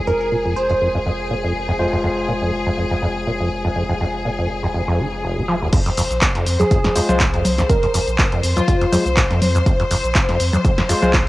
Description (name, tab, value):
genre	acid house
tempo	122 BPM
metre	4/4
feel	swing 54% on 16ths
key	F minor pentatonic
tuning	A4 = 440 Hz
part	clear symphonic string section	sustained chords	0.0-11.3 s	Ab4 to C5	-25 LUFS	left 3 dB	sidechain pumping
part	overdriven tine electric piano	stabs	0.0-11.1 s	Ab3 to C5	-25 LUFS	left 1 dB	analog delay
part	warm sub bass	bass	0.0-11.3 s	F1 to F2	-25 LUFS	equal	tube saturation, sidechain pumping
part	glassy wavetable pluck	melody	0.1-0.8, 6.6-8.8 s	F4 to C5	-23 LUFS	right 1 dB	chorus, cassette tape, tape echo
part	deep acid bass	riff	0.1-11.2 s	F1 to F3	-22 LUFS	equal	tube saturation, lush chorus, sidechain pumping, analog delay
part	electronic kick drum	drums	5.7-11.2 s	none	-18 LUFS	equal	cassette tape
part	punchy analog drum machine	drums	5.7-11.2 s	congas, crash cymbal, handclaps, hi-hat, shaker, snare drum	-20 LUFS	equal	cassette tape
room	light reverb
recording	home recording on cassette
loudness	-16 LUFS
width	side -18 dB against mid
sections	0.0-5.7 A section; 5.7-11.3 B section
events	drop 5.7-11.3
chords	0.0 Fm; 5.7 F5